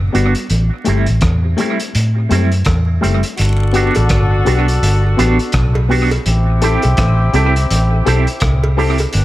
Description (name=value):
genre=roots reggae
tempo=83 BPM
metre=4/4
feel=swing 60% on 16ths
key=unclear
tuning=A4 = 441 Hz
part: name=vintage muted fingered electric bass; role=bass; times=0.0-9.2 s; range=F#1 to A2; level=-14 LUFS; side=equal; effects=none
part: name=electric guitar with an envelope filter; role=accompaniment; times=0.1-9.0 s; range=G3 to G4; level=-21 LUFS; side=right 5 dB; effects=tremolo, tape echo
part: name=dark upright piano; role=stabs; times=0.1-8.9 s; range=G3 to A4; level=-22 LUFS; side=left 5 dB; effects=none
part: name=crunchy breakbeat drum kit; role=drums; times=0.1-9.2 s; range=hi-hat, kick drum, rim click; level=-20 LUFS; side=equal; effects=analog delay
part: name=warm horn section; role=second line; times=3.4-9.2 s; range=B3 to A4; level=-21 LUFS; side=left 2 dB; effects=tape echo
part: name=jawbone-type rattle and cowbell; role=percussion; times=3.4-9.1 s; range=none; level=-25 LUFS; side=right 2 dB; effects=none
room=small room ambience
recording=vinyl crackle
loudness=-12 LUFS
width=side -16 dB against mid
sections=0.0-3.4 A section; 3.4-9.2 B section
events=none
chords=0.5 Am7; 3.4 Gmaj7; 6.3 Am7